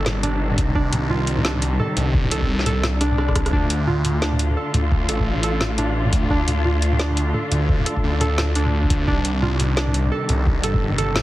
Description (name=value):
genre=half-time drum and bass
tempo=173 BPM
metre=4/4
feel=swing 59% on 16ths, half-time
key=D phrygian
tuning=A4 = 438 Hz
part: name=dark studio cello section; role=sustained chords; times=0.0-11.2 s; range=C3 to F4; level=-26 LUFS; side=left 1 dB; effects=vintage 12-bit sampler grit, sidechain pumping
part: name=warbly dusty pluck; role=arpeggios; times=0.0-11.2 s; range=D4 to A4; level=-26 LUFS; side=right 3 dB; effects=chorus, dub echo
part: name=phased detuned saw bass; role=bass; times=0.0-11.2 s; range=G1 to D2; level=-21 LUFS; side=equal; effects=phaser
part: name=drum and bass drum kit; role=drums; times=0.1-11.2 s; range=hi-hat, rim click, snare drum, toms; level=-24 LUFS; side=equal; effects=none
part: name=electronic kick drum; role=drums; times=0.6-10.8 s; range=none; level=-21 LUFS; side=equal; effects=none
part: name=swell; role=sound effects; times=3.0-3.5 s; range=none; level=-32 LUFS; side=left 5 dB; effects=none
room=light reverb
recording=heavily compressed radio sound, multiband compression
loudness=-18 LUFS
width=side -16 dB against mid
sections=0.0-11.2 A section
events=swell 3.0-3.5; drum fill 3.0-3.5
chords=0.0 Cm; 3.5 Dm; 9.1 Cm